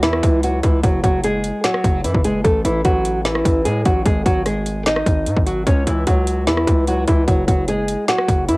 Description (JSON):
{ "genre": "hip hop, trap", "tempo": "149 BPM", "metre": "4/4", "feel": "half-time", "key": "C# minor", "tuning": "A4 = 439 Hz", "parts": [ { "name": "nylon-string guitar", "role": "melody", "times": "0.0-8.6 s", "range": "E3 to D#5", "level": "-18 LUFS", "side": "equal", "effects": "low-pass filter, cassette tape" }, { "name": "distorted 808-style bass", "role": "bass", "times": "0.0-8.6 s", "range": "F#1 to A2", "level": "-21 LUFS", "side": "equal", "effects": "distortion" }, { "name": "trap drum kit", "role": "drums", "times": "0.0-8.6 s", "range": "hi-hat, kick drum, rim click, snare drum", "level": "-18 LUFS", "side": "equal", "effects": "none" } ], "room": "digital ambience", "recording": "home recording on cassette", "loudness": "-15 LUFS", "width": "side -24 dB against mid", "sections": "0.0-8.6 A section", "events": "none", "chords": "0.0 C#m; 0.8 Eadd9/F# (rootless); 2.4 A5; 4.1 G#5; 5.7 C#m; 7.3 Eadd9/F# (rootless)", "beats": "0.03 0.43 | 0.83 1.24 1.64 2.04 | 2.45 2.85 3.25 3.65 | 4.06 4.46 4.86 5.26 | 5.67 6.07 6.47 6.88 | 7.28 7.68 8.08 8.49" }